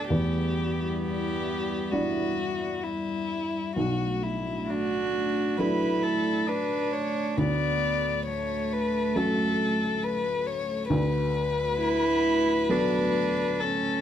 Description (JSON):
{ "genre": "neoclassical piano and strings", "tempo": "67 BPM", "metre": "4/4", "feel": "rubato", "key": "B minor", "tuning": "A4 = 438 Hz", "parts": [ { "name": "rich violin", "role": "melody", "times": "0.0-14.0 s", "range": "D4 to D5", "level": "-29 LUFS", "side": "left 5 dB", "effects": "plate reverb" }, { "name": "clear cello", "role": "second line", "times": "0.0-14.0 s", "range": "A3 to F#4", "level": "-30 LUFS", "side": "right 4 dB", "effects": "none" }, { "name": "warm upright piano", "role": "accompaniment", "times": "0.0-14.0 s", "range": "B1 to A4", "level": "-30 LUFS", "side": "right 1 dB", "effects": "none" }, { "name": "dark analog pad", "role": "sustained chords", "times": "0.0-14.0 s", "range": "G3 to D5", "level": "-35 LUFS", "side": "equal", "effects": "chorus" } ], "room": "moderate studio reverb, RT60 0.6 s", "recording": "dark, warm production", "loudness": "-24 LUFS", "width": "side -10 dB against mid", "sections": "0.0-14.0 A section", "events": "none", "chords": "0.1 Em7; 3.8 Bm7; 7.4 Dmaj7; 10.9 Bm7/D" }